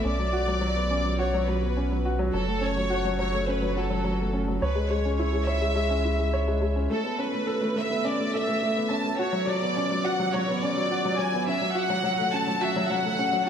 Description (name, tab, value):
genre	piano and strings electronica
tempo	105 BPM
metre	4/4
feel	straight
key	A major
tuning	A4 = 441 Hz
part	warm studio violin section	melody	0.0-13.5 s	A4 to A5	-28 LUFS	equal	ping-pong delay
part	dark upright piano	riff	0.0-13.5 s	F#3 to C#5	-27 LUFS	left 1 dB	ping-pong delay
part	round analog bass	bass	0.0-6.9 s	F#1 to C#2	-28 LUFS	right 1 dB	tube saturation
room	wet plate reverb, RT60 2.8 s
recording	dreamy mix soaked in reverb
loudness	-23 LUFS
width	side -8 dB against mid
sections	0.0-6.9 A section; 6.9-13.5 B section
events	build-up 6.9-13.5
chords	0.0 Bmadd9; 2.3 F#m; 4.6 C#m; 6.9 Aadd9; 9.2 Bmadd9; 11.5 F#m